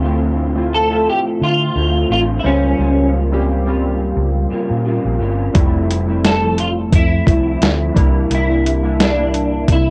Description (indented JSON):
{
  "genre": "indie pop, bedroom pop",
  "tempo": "87 BPM",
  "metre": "4/4",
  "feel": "swing 55% on 16ths",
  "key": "F major",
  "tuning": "A4 = 440 Hz",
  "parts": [
    { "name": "electric guitar through a small old amp", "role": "accompaniment", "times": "0.0-9.9 s", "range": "C3 to F4", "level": "-25 LUFS", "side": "equal", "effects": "ensemble chorus, vibrato effect, cassette tape" },
    { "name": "warbly lo-fi synth keys", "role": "accompaniment", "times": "0.0-9.9 s", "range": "F3 to E5", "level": "-24 LUFS", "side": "equal", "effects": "chorus, cassette tape" },
    { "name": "vintage muted fingered electric bass", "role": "bass", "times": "0.0-9.9 s", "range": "F1 to D3", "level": "-21 LUFS", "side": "equal", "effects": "none" },
    { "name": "electric guitar through a small old amp", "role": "melody", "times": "0.7-9.9 s", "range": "Db4 to A4", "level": "-21 LUFS", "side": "equal", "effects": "ensemble chorus, cassette tape, analog delay" },
    { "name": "lo-fi sampler-style drum kit", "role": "drums", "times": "5.5-9.9 s", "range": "hi-hat, kick drum, snare drum", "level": "-17 LUFS", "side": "equal", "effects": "overdrive, cassette tape" }
  ],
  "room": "moderate booth ambience, RT60 0.2 s",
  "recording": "home recording on cassette",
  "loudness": "-16 LUFS",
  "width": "mono",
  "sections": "0.0-9.9 A section",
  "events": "none",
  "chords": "0.0 Dm7; 2.4 Bbm6/Db; 5.5 Fmaj7; 8.0 C7"
}